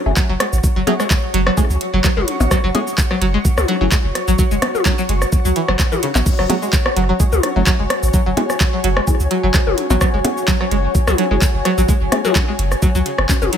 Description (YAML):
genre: minimal techno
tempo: 128 BPM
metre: 4/4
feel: swing 54% on 16ths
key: F# minor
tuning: A4 = 440 Hz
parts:
  - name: granular cloud pad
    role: texture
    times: 0.0-13.6 s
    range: F#4 to C#6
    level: -24 LUFS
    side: left 1 dB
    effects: built-in reverb, sidechain pumping
  - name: filtered dub chord stab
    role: stabs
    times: 0.1-12.2 s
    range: A3 to G#4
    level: -25 LUFS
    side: left 2 dB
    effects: phaser, analog chorus, ping-pong delay
  - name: punchy sub bass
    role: bass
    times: 0.1-13.5 s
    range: F#1 to C#2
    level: -18 LUFS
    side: equal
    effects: sidechain pumping
  - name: string-like resonator pluck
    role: riff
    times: 0.2-13.6 s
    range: C#3 to C#4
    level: -22 LUFS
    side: right 1 dB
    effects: chorus, phaser, sidechain pumping, digital delay
  - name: electronic kick drum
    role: drums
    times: 0.2-13.4 s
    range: none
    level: -16 LUFS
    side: equal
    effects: overdrive, small room ambience
  - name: garage drum kit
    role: drums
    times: 0.2-13.6 s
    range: crash cymbal, handclaps, hi-hat, shaker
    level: -23 LUFS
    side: right 1 dB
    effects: overdrive, small room ambience
  - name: minimal click drum kit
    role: percussion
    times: 0.4-13.5 s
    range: percussion blips, rim click, toms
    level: -21 LUFS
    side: left 3 dB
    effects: small room ambience, ping-pong delay
room: digital ambience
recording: none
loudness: -14 LUFS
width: side -8 dB against mid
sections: 0.0-13.6 A section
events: none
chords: 0.0 F#5